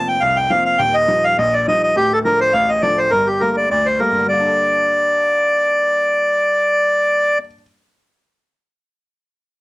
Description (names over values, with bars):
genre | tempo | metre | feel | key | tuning
celtic folk, Celtic reel | 206 BPM | 4/4 | swing 54% on 8ths | G minor | A4 = 440 Hz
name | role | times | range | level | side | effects
accordion | melody | 0.0-7.4 s | G4 to G5 | -14 LUFS | equal | none
clear upright piano | accompaniment | 0.0-7.6 s | D1 to A4 | -24 LUFS | left 2 dB | none
room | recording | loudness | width
light reverb | dry, gritty hardware recording | -14 LUFS | side -20 dB against mid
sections
0.0-4.3 A section; 4.3-6.6 B section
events
none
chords
0.0 Fsus4; 0.8 Ebadd9; 2.0 Dm; 3.1 Gmadd9